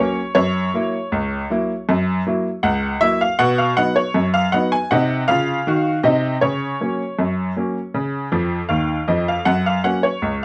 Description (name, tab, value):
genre	ragtime piano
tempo	79 BPM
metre	2/4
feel	straight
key	F# major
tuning	A4 = 441 Hz
part	clear upright piano	solo	0.0-10.4 s	C#2 to G#5	-19 LUFS	equal	none
room	light reverb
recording	close, detailed microphones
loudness	-19 LUFS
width	mono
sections	0.0-10.4 A section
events	upright piano fill 8.3-9.5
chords	0.4 F#7; 3.4 B; 4.9 Cdim; 6.4 F#/C#; 7.9 C#; 9.5 F#